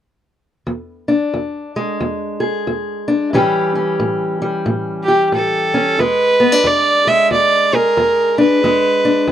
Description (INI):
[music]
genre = acoustic country blues, solo or duo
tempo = 91 BPM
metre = 4/4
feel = swing 62% on 8ths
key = E mixolydian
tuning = A4 = 440 Hz
[part]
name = fingerpicked steel-string acoustic guitar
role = accompaniment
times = 0.7-9.3 s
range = E2 to G#4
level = -16 LUFS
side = left 2 dB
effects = none
[part]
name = warm fiddle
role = melody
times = 5.0-9.3 s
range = G4 to E5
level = -13 LUFS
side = right 2 dB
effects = none
[sound]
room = light reverb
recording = dry, close 1970s-style studio recording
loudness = -13 LUFS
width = side -10 dB against mid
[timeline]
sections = 0.7-6.0 A section; 6.0-9.3 B section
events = none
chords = 0.7 E7; 3.3 A7; 6.0 E7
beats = | 0.67 1.33 1.99 2.66 | 3.32 3.98 4.65 5.31 | 5.97 6.63 7.29 7.96 | 8.62 9.28